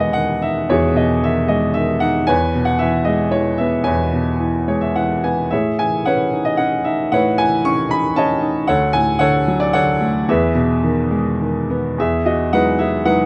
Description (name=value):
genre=classical, lyrical solo piano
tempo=98-118 BPM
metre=3/4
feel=rubato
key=E major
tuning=A4 = 440 Hz
part: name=clear baby grand piano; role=solo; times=0.0-13.3 s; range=D2 to C#6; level=-17 LUFS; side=equal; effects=none
room=light reverb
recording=close, detailed microphones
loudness=-17 LUFS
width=mono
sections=0.0-12.0 A section; 12.0-13.3 B section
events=grand piano fill 4.4-5.5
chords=0.0 Emaj9; 5.5 Amaj9#11; 8.7 Dmaj7; 10.3 Emaj7; 12.0 Emaj9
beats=0.15 | 0.69 1.23 1.76 | 2.28 2.81 3.33 | 3.85 4.39 4.96 | 5.52 6.07 6.60 | 7.13 7.66 8.17 | 8.68 9.21 9.75 | 10.29 10.82 11.39 | 11.97 12.53 13.06